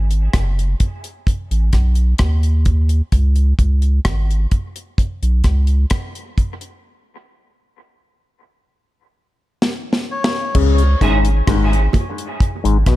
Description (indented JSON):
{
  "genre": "dub reggae",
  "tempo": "65 BPM",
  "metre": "4/4",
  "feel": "straight",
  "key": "C# minor",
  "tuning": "A4 = 437 Hz",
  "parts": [
    { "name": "warm sub bass", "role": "bass", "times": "0.0-13.0 s", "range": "F#1 to D#2", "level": "-14 LUFS", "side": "equal", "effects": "none" },
    { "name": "deep reggae drum kit", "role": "drums", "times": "0.1-13.0 s", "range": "crash cymbal, hi-hat, kick drum, rim click, snare drum", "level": "-18 LUFS", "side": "equal", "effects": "none" },
    { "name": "melodica", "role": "melody", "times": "10.1-10.6 s", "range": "C#5", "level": "-27 LUFS", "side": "left 2 dB", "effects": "dub echo" },
    { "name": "auto-wah clav", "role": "riff", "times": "10.5-13.0 s", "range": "G#2 to C#3", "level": "-20 LUFS", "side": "left 7 dB", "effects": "dub echo" },
    { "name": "clean electric guitar", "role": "accompaniment", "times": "11.0-11.2 s", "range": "C#4 to G#4", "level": "-26 LUFS", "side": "right 3 dB", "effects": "ensemble chorus, dub echo" },
    { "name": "bongos", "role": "percussion", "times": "11.0-12.2 s", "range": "none", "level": "-28 LUFS", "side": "right 6 dB", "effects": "dub echo" }
  ],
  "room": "studio ambience",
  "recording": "echo-heavy mix",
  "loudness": "-15 LUFS",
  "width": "side -17 dB against mid",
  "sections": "0.0-10.5 A section; 10.5-13.0 B section",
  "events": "break 0.0-10.5; drum fill 9.6-10.5",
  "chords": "0.0 B; 3.1 C#5; 6.8 N.C.; 10.5 C#5",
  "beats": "0.34 1.27 2.20 | 3.13 4.05 4.98 5.91 | 6.84 7.76 8.69 9.62 | 10.54 11.47 12.40"
}